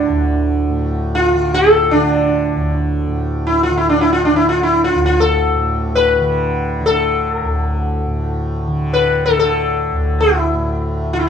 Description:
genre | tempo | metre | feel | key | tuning
indian classical, Hindustani | free time | none | none | D raga shivaranjani | A4 = 441 Hz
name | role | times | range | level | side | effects
sitar | melody | 0.0-11.3 s | D4 to B4 | -15 LUFS | equal | none
tanpura | drone | 0.0-11.3 s | D2 to D3 | -18 LUFS | equal | none
room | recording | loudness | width
wet small room ambience, RT60 0.5 s | dark, warm production | -13 LUFS | side -7 dB against mid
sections
0.0-3.1 A section; 3.1-11.3 A section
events
none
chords
none

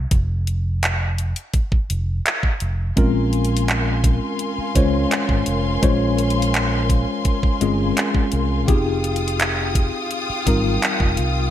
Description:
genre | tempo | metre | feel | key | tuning
contemporary R&B | 84 BPM | 4/4 | straight | Bb dorian | A4 = 440 Hz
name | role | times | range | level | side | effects
fingered electric bass | bass | 0.0-11.5 s | F1 to Db2 | -22 LUFS | equal | none
trap drum kit | drums | 0.1-11.3 s | handclaps, hi-hat, kick drum | -20 LUFS | equal | gated reverb
mellow tine electric piano | accompaniment | 3.0-11.5 s | G3 to Db5 | -22 LUFS | left 2 dB | medium stereo tremolo
warm studio string section | sustained chords | 3.0-11.5 s | F4 to Eb6 | -26 LUFS | left 1 dB | sidechain pumping
room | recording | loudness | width
light reverb | bright 1980s-style digital production | -17 LUFS | side -11 dB against mid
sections
0.0-11.5 A section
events
none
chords
0.0 N.C.; 3.0 Bbm9; 8.7 Fm9

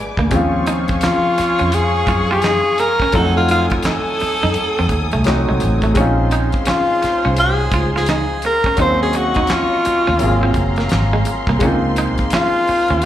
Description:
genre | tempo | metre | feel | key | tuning
R&B, neo-soul | 85 BPM | 4/4 | swing 62% on 16ths | Bb minor | A4 = 439 Hz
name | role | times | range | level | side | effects
warm baby grand piano | accompaniment | 0.0-13.1 s | F3 to Gb5 | -21 LUFS | left 1 dB | slapback echo
warm studio string section | sustained chords | 0.0-13.1 s | Gb3 to Eb6 | -26 LUFS | left 1 dB | none
clean electric guitar | second line | 0.2-13.0 s | Ab3 to F4 | -24 LUFS | right 4 dB | lush chorus, slapback echo
vintage muted fingered electric bass | bass | 0.2-13.1 s | Gb1 to Gb2 | -19 LUFS | equal | none
damped 70s drum kit | drums | 0.2-13.1 s | handclaps, hi-hat, kick drum, snare drum | -22 LUFS | equal | none
breathy tenor saxophone | melody | 1.0-13.1 s | F4 to C5 | -17 LUFS | left 1 dB | slapback echo
room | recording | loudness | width
light reverb, small room ambience | live gig heard through the venue's PA, club reverb | -14 LUFS | side -12 dB against mid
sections
0.0-13.1 A section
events
none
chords
0.3 Ebm11; 3.1 F7b9; 6.0 Bbm9; 8.8 Ebm7; 10.2 Ab13; 11.6 Dbmaj7

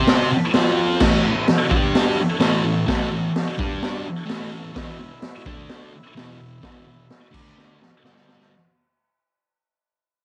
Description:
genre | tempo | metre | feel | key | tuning
garage rock duo or trio | 128 BPM | 4/4 | straight | A major | A4 = 440 Hz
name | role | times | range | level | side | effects
combo organ | sustained chords | 0.0-8.5 s | C4 to A5 | -36 LUFS | equal | none
thick fuzz guitar | riff | 0.0-8.5 s | E2 to C5 | -25 LUFS | equal | distortion
raw garage drum kit | drums | 0.1-8.5 s | crash cymbal, hi-hat, kick drum, snare drum | -23 LUFS | equal | cassette tape
room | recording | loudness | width
light reverb | home recording on cassette | -20 LUFS | mono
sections
0.0-8.5 A section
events
fade-out 0.0-8.5; transistor combo organ fill 0.1-1.0, 7.8-8.5; drum fill 7.6-8.5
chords
0.3 N.C.; 0.5 F5; 1.0 A; 1.7 G5; 2.2 A; 3.6 G5; 4.0 A; 4.8 E5; 5.5 D5; 5.9 E5; 7.3 D5; 7.8 N.C.; 8.0 G5

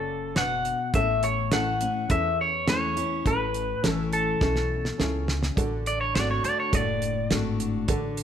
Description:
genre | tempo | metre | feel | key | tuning
honky-tonk and classic country | 104 BPM | 4/4 | straight | A major | A4 = 440 Hz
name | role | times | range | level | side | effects
electric guitar through a small old amp | melody | 0.0-7.3 s | A4 to F#5 | -26 LUFS | equal | none
honky-tonk upright piano | accompaniment | 0.0-8.2 s | C#4 to D5 | -33 LUFS | right 3 dB | none
picked steel-string acoustic guitar | accompaniment | 0.0-8.2 s | E2 to F#4 | -31 LUFS | left 5 dB | none
upright bass | bass | 0.0-8.2 s | F#1 to E2 | -32 LUFS | right 1 dB | none
damped 70s drum kit | drums | 0.4-8.2 s | hi-hat, kick drum, snare drum | -28 LUFS | right 1 dB | none
room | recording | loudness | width
light reverb | none | -23 LUFS | side -9 dB against mid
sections
0.0-5.6 A section; 5.6-8.2 B section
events
drum fill 4.4-5.6; clean electric guitar solo 5.6-8.2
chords
0.0 Bm; 0.9 A; 5.6 D

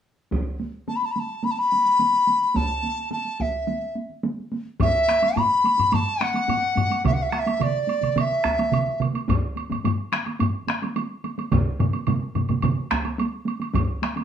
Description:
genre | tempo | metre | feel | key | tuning
japanese traditional, taiko drum ensemble | 107 BPM | 4/4 | straight | E suspended pentatonic | A4 = 439 Hz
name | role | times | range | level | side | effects
solo taiko drums | percussion | 0.3-13.9 s | none | -27 LUFS | right 1 dB | none
taiko ensemble | percussion | 0.3-14.2 s | none | -29 LUFS | right 2 dB | none
mellow hollow dizi | melody | 0.9-9.0 s | D5 to B5 | -21 LUFS | left 1 dB | none
taiko ensemble | percussion | 4.8-14.2 s | none | -26 LUFS | left 4 dB | none
woodblock | percussion | 4.8-14.2 s | none | -34 LUFS | right 7 dB | none
solo taiko drums | percussion | 7.1-13.0 s | none | -25 LUFS | right 5 dB | none
room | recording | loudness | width
wet studio reverb, RT60 0.6 s | band playing live in one room | -21 LUFS | side -8 dB against mid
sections
0.3-4.8 A section; 4.8-14.2 B section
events
none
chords
none

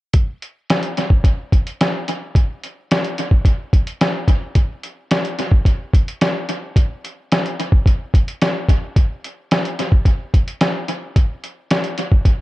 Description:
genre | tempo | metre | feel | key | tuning
indie pop | 109 BPM | 4/4 | straight | none | none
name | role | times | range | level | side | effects
lo-fi sampler-style drum kit | drums | 0.1-12.4 s | hi-hat, kick drum, snare drum | -15 LUFS | equal | tape echo
room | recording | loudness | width
light reverb | echo-heavy mix, cassette tape | -16 LUFS | side -18 dB against mid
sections
0.1-9.0 A section; 9.0-12.4 B section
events
none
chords
none

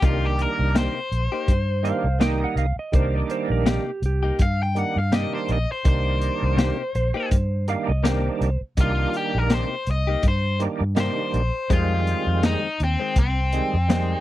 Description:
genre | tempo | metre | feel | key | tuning
straight-eighth soul blues | 82 BPM | 4/4 | swing 56% on 16ths | C minor | A4 = 440 Hz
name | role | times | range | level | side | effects
biting overdriven guitar | melody | 0.0-14.2 s | C4 to G5 | -26 LUFS | left 3 dB | none
overdriven tonewheel organ | accompaniment | 0.0-14.2 s | Eb3 to Eb4 | -27 LUFS | right 5 dB | slow rotary speaker, chorus vibrato
direct-recorded clean electric guitar | stabs | 0.0-14.1 s | F2 to G4 | -28 LUFS | left 7 dB | wide subtle chorus
vintage muted fingered electric bass | bass | 0.0-14.1 s | Bb1 to G2 | -23 LUFS | equal | none
crunchy breakbeat drum kit | drums | 0.0-14.1 s | hi-hat, kick drum, snare drum | -22 LUFS | equal | none
clean lap steel guitar | second line | 1.8-8.6 s | G4 to G5 | -30 LUFS | right 4 dB | none
room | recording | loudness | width
little or no reverb | dry, close 1970s-style studio recording | -20 LUFS | side -14 dB against mid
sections
0.0-14.2 A section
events
none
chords
0.0 Cm7; 11.7 Fm7

